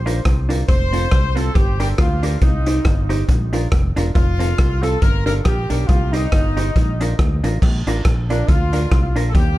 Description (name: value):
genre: ska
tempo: 138 BPM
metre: 4/4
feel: swing 57% on 8ths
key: Bb major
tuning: A4 = 440 Hz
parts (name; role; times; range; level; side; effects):
- clear horn section; melody; 0.0-9.6 s; D4 to C5; -25 LUFS; left 1 dB; dub echo
- fingered electric bass; bass; 0.0-9.6 s; E1 to Eb2; -20 LUFS; equal; none
- vintage hollow-body jazz guitar; accompaniment; 0.1-9.3 s; C4 to C5; -25 LUFS; right 1 dB; dub echo
- raw garage drum kit; drums; 0.1-9.5 s; crash cymbal, hi-hat, kick drum, rim click; -18 LUFS; equal; none
room: studio reverb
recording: dark, warm production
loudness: -15 LUFS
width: side -16 dB against mid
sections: 0.0-7.6 A section; 7.6-9.6 B section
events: none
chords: 0.0 Bb; 0.7 F; 1.6 Gm; 2.4 Cm; 3.3 Bb; 4.2 F; 5.0 Gm; 5.9 Cm; 6.8 Bb